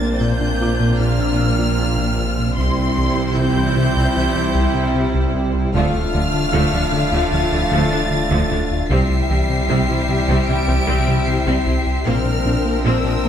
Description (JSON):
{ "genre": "cinematic, hybrid orchestral and electronic film score", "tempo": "76 BPM", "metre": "4/4", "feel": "straight", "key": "unclear", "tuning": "A4 = 439 Hz", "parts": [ { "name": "warm studio violin section", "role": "melody", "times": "0.0-13.3 s", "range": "C6 to D7", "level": "-26 LUFS", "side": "left 1 dB", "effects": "none" }, { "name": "rich symphonic violin section", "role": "second line", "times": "0.0-13.3 s", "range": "E4 to F5", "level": "-26 LUFS", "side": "left 3 dB", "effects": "none" }, { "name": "rich symphonic viola section", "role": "accompaniment", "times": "0.0-13.3 s", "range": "F3 to E4", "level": "-27 LUFS", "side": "right 1 dB", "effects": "none" }, { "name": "clear trombone section", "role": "sustained chords", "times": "0.0-13.3 s", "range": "A2 to Bb3", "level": "-27 LUFS", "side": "right 4 dB", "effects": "none" }, { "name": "lush unison pad", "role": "sustained chords", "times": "0.0-13.3 s", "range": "F3 to C5", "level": "-29 LUFS", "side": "equal", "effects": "none" }, { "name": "mellow French horn section", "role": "sustained chords", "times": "0.0-13.3 s", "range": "C4 to F4", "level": "-27 LUFS", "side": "left 6 dB", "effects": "none" }, { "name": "round analog bass", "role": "riff", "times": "0.0-13.3 s", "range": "C2 to Bb3", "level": "-23 LUFS", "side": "left 2 dB", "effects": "none" }, { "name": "dark symphonic double bass section", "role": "bass", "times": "0.0-13.3 s", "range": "Bb1 to D2", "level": "-24 LUFS", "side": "right 3 dB", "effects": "none" }, { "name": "rich studio cello section", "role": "bass", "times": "0.0-13.3 s", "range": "Bb2 to D3", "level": "-26 LUFS", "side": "right 3 dB", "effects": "none" }, { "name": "sub bass with octave", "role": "bass", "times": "0.0-13.3 s", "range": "D1 to C2", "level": "-25 LUFS", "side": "equal", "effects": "none" }, { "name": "felt-muted upright piano", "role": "texture", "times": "0.0-13.3 s", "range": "C4 to F6", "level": "-34 LUFS", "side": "left 2 dB", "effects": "none" }, { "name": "harp-like synth pluck", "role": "arpeggios", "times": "0.2-13.3 s", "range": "C3 to Bb4", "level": "-27 LUFS", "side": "right 1 dB", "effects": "none" } ], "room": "moderate scoring stage reverb, RT60 1.5 s", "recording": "none", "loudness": "-16 LUFS", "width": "side -9 dB against mid", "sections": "0.0-13.3 A section", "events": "none", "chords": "0.0 Bbadd9; 2.6 C; 5.7 Dm; 8.9 C; 12.1 Bbadd9" }